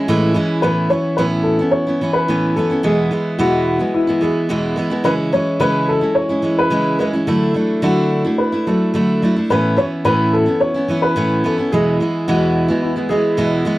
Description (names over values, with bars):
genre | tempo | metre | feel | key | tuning
pop | 108 BPM | 4/4 | straight | A major | A4 = 442 Hz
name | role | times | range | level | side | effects
picked steel-string acoustic guitar | accompaniment | 0.0-13.8 s | E2 to E4 | -16 LUFS | right 1 dB | none
dark upright piano | melody | 0.6-13.6 s | E4 to C#5 | -19 LUFS | left 1 dB | none
room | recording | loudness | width
light reverb | none | -14 LUFS | side -17 dB against mid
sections
0.6-13.8 A section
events
none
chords
0.0 Amaj7; 0.6 Aadd9; 2.8 E; 5.1 C#m; 7.3 Dadd9; 9.5 Aadd9; 11.7 E